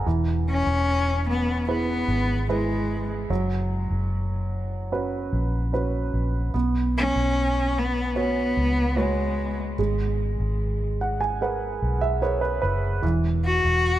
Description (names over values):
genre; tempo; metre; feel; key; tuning
pop; 74 BPM; 4/4; straight; unclear; A4 = 439 Hz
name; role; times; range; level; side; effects
warm concert grand piano; accompaniment; 0.0-14.0 s; E3 to G#5; -28 LUFS; right 4 dB; none
vintage muted fingered electric bass; bass; 0.0-14.0 s; E1 to C#2; -25 LUFS; equal; none
rich cello; melody; 0.5-14.0 s; G#3 to F#4; -25 LUFS; left 2 dB; tape echo
room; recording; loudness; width
light reverb, small room ambience; none; -22 LUFS; side -13 dB against mid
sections
0.0-14.0 A section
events
grand piano fill 10.6-13.0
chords
0.1 E; 3.3 F#sus4; 6.5 Bsus2; 9.8 G#madd9; 13.0 N.C.